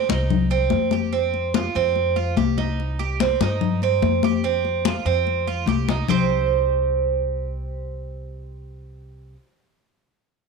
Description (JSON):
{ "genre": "latin, Cuban son and guajira", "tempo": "145 BPM", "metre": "4/4", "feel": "straight", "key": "C minor", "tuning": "A4 = 439 Hz", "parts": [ { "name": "Cuban tres", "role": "arpeggios", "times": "0.0-9.4 s", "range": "C4 to C5", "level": "-23 LUFS", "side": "right 8 dB", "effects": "none" }, { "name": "upright bass", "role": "bass", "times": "0.1-9.3 s", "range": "C2 to G2", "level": "-26 LUFS", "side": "equal", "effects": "none" }, { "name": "congas", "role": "percussion", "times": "0.1-6.2 s", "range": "none", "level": "-23 LUFS", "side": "left 10 dB", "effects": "none" } ], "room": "moderate echo chamber reverb, RT60 2.0 s, small room ambience", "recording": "1960s-style stereo with parts hard left and right", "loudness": "-19 LUFS", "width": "side -4 dB against mid", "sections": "0.0-6.1 A section; 6.1-9.4 B section", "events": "drum fill 5.9", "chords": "0.0 Cm; 6.1 C5", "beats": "0.30 0.72 | 1.13 1.54 1.96 2.37 | 2.78 3.20 3.61 4.02 | 4.44 4.85 5.26 5.68 | 6.09 6.50 6.92 7.33 | 7.74 8.16 8.57 8.98" }